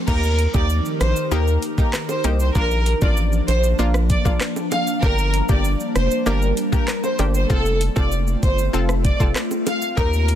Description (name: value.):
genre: dancehall.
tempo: 97 BPM.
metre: 4/4.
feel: straight.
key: unclear.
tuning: A4 = 439 Hz.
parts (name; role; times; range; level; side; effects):
ethereal airy pad; sustained chords; 0.0-10.4 s; Eb3 to Bb4; -26 LUFS; equal; ensemble chorus, built-in reverb, sidechain pumping.
warm studio violin section; melody; 0.1-10.2 s; A4 to F5; -24 LUFS; equal; digital delay.
analog pluck; accompaniment; 0.1-10.1 s; Bb3 to Bb4; -26 LUFS; left 2 dB; chorus, sidechain pumping.
round analog bass; bass; 0.1-10.4 s; F1 to Eb2; -20 LUFS; equal; none.
island pop drum kit; drums; 0.1-10.4 s; crash cymbal, handclaps, hi-hat, kick drum, rim click, shaker; -22 LUFS; equal; none.
bongos; percussion; 0.5-9.8 s; none; -30 LUFS; right 7 dB; none.
room: little or no reverb.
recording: dense, heavily limited modern master.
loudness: -17 LUFS.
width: side -10 dB against mid.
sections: 0.1-10.4 A section.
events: none.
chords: 0.1 Eb; 2.6 Bb; 5.0 Gm; 7.5 F.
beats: | 0.08 0.70 1.32 1.94 | 2.55 3.17 3.79 4.41 | 5.03 5.65 6.26 6.88 | 7.50 8.12 8.74 9.36 | 9.98.